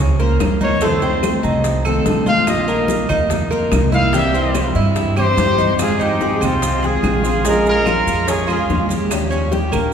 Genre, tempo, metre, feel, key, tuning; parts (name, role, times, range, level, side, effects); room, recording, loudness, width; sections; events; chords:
latin, Cuban son and guajira; 145 BPM; 4/4; straight; F minor; A4 = 439 Hz
picked steel-string acoustic guitar; accompaniment; 0.0-9.9 s; C3 to C5; -22 LUFS; left 2 dB
Cuban tres; arpeggios; 0.0-9.9 s; G3 to Bb4; -21 LUFS; right 2 dB
upright bass; bass; 0.0-9.9 s; Bb1 to G2; -20 LUFS; right 1 dB
congas; percussion; 0.0-9.9 s; -25 LUFS; left 1 dB
maracas; percussion; 0.2-9.9 s; -33 LUFS; right 5 dB
bongos; percussion; 0.4-9.9 s; -27 LUFS; left 4 dB
claves; percussion; 0.4-9.9 s; -34 LUFS; right 6 dB
warm trumpet; melody; 0.6-8.9 s; F4 to F5; -21 LUFS; left 1 dB
breathy bright jazz flute; second line; 5.2-8.9 s; C4 to G4; -27 LUFS; right 4 dB
wet church reverb, RT60 3.3 s; recorded in a church or concert hall; -14 LUFS; side -7 dB against mid
0.0-5.8 A section; 5.8-9.9 B section
trumpet solo 0.0-5.8
0.0 Bbmadd9; 0.8 F7; 2.5 Bbsus4; 4.1 C; 5.8 Fm7; 7.4 Bbm7; 9.1 Eb7